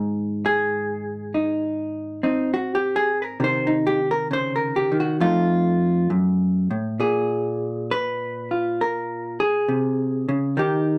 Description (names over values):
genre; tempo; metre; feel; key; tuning
solo jazz; 67 BPM; 4/4; swing 69% on 8ths; unclear; A4 = 440 Hz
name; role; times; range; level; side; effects
vintage hollow-body jazz guitar; solo; 0.0-11.0 s; F2 to C5; -23 LUFS; equal; none
room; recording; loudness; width
light reverb; dark, warm production; -23 LUFS; mono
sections
0.0-11.0 A section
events
hollow-body jazz guitar solo 0.0-11.0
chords
0.0 Ab; 3.4 Cm; 5.2 F7; 7.0 Bb7(no3)